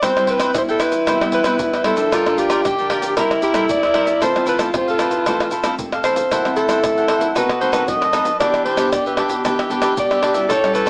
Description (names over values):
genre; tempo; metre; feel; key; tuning
samba and choro; 115 BPM; 4/4; straight; C major; A4 = 439 Hz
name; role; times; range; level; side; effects
breathy alto saxophone; melody; 0.0-10.9 s; G4 to D#5; -22 LUFS; equal; none
breathy tenor saxophone; second line; 0.0-10.9 s; C4 to A4; -24 LUFS; equal; none
cavaquinho; accompaniment; 0.0-10.9 s; D4 to G5; -25 LUFS; equal; none
nylon-string guitar; accompaniment; 0.0-10.9 s; F2 to G4; -29 LUFS; equal; none
tube shaker, surdo, pandeiro and tamborim; percussion; 0.0-10.9 s; none; -26 LUFS; equal; none
room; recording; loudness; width
moderate studio reverb, RT60 0.7 s; small speaker sound; -18 LUFS; mono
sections
0.0-10.9 A section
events
none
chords
0.0 Cmaj7; 2.1 Gm7; 3.2 C7; 4.2 Fmaj7; 6.3 F#m7b5; 7.4 B7b9; 8.4 Em7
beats
| 0.03 0.55 1.07 1.60 | 2.12 2.65 3.17 3.69 | 4.22 4.74 5.26 5.79 | 6.31 6.83 7.36 7.88 | 8.40 8.93 9.45 9.97 | 10.50